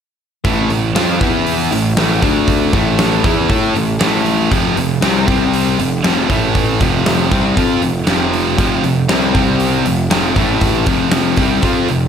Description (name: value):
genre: hard rock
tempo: 118 BPM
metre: 4/4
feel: straight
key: A minor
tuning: A4 = 440 Hz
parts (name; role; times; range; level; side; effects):
- overdriven semi-hollow guitar; riff; 0.4-12.1 s; F2 to A4; -18 LUFS; left 10 dB; none
- fuzz picked electric bass; bass; 0.4-12.1 s; F1 to A2; -19 LUFS; right 1 dB; overdrive
- huge arena drum kit; drums; 0.4-12.0 s; hi-hat, kick drum, snare drum; -18 LUFS; equal; none
- high-gain distorted guitar; riff; 0.5-12.1 s; F2 to A4; -18 LUFS; right 10 dB; distortion
room: light reverb, small room reverb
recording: none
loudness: -12 LUFS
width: side -8 dB against mid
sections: 0.4-12.1 A section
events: none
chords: 0.4 Am; 1.2 E5; 1.7 A5; 2.2 D5; 2.7 A5; 4.5 F5; 5.3 C5; 5.8 F5; 6.3 A5; 6.8 F5; 9.3 C5; 9.9 F5; 10.4 A5; 10.9 F5